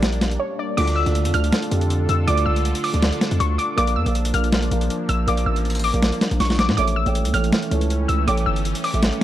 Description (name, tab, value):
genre	hip hop, trap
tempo	160 BPM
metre	4/4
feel	half-time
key	D harmonic minor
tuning	A4 = 440 Hz
part	warbly dusty pluck	melody	0.0-9.2 s	C#5 to F6	-25 LUFS	left 1 dB	chorus, tape echo
part	dark concert grand piano	accompaniment	0.0-9.2 s	D3 to G5	-27 LUFS	right 2 dB	none
part	sweeping resonant pad	sustained chords	0.0-9.2 s	D3 to A4	-29 LUFS	right 1 dB	chorus
part	distorted 808-style bass	bass	0.0-9.1 s	G1 to Bb2	-21 LUFS	equal	distortion
part	boom bap sampler-style drum kit	drums	0.0-9.2 s	crash cymbal, hi-hat, snare drum	-24 LUFS	equal	overdrive
room	little or no reverb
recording	dark, warm production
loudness	-18 LUFS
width	side -12 dB against mid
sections	0.8-9.2 A section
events	break 0.4-0.8; drum fill 6.4-6.8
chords	0.0 Gm; 0.8 Dm; 3.8 Bb; 6.8 A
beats	0.03 0.40 | 0.78 1.15 1.53 1.90 | 2.28 2.65 3.03 3.40 | 3.78 4.15 4.53 4.90 | 5.28 5.65 6.03 6.40 | 6.78 7.15 7.53 7.90 | 8.28 8.65 9.03